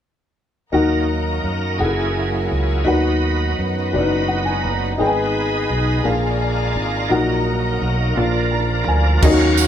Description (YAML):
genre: slow gospel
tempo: 56 BPM (dotted quarters)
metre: 6/8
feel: straight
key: Eb harmonic minor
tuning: A4 = 440 Hz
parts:
  - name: dark upright piano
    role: accompaniment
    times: 0.7-9.7 s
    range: Ab2 to Bb5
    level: -20 LUFS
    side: left 2 dB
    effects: none
  - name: bright tonewheel organ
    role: sustained chords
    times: 0.7-9.7 s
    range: F3 to F5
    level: -23 LUFS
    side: right 3 dB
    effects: slow rotary speaker, overdrive, chorus vibrato
  - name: warm studio string section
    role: sustained chords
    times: 0.7-9.2 s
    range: D#4 to Cb6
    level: -29 LUFS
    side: left 2 dB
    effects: none
  - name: fingered electric bass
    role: bass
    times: 0.7-9.7 s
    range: Gb1 to Gb2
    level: -21 LUFS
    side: right 1 dB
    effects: none
  - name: crisp fusion drum kit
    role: drums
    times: 9.2-9.7 s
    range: crash cymbal, kick drum, ride cymbal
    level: -18 LUFS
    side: equal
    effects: none
  - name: tambourine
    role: percussion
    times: 9.6-9.7 s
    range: none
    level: -20 LUFS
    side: right 7 dB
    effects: none
room: moderate studio reverb, RT60 0.6 s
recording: band playing live in one room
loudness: -16 LUFS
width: side -10 dB against mid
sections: 0.7-9.2 A section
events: upright piano fill 3.9-5.0, 8.2-9.2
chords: 0.7 Ebm; 1.8 Gb9; 2.9 B/D#; 5.0 Abm; 6.0 Bb7; 7.1 Ebm/Bb; 8.2 Bb